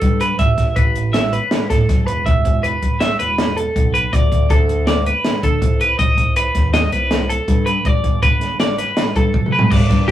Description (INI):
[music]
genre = math rock and midwest emo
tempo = 161 BPM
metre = 5/4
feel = straight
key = G major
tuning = A4 = 440 Hz
[part]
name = twelve-string electric guitar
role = arpeggios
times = 0.0-10.1 s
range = G4 to E5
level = -19 LUFS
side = right 1 dB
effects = none
[part]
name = growling fingered electric bass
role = bass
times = 0.0-10.1 s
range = E1 to D3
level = -21 LUFS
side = equal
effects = overdrive
[part]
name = compact cocktail drum kit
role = drums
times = 0.0-10.1 s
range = crash cymbal, hi-hat, kick drum, ride cymbal, snare drum, toms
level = -17 LUFS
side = equal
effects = none
[sound]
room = light reverb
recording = rough rehearsal-room recording, warm saturation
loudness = -14 LUFS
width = side -12 dB against mid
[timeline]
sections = 0.0-9.7 A section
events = drum fill 9.3-9.7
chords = 0.4 Asus2; 2.3 Em; 4.1 D5; 6.0 Cm; 7.9 Gmaj7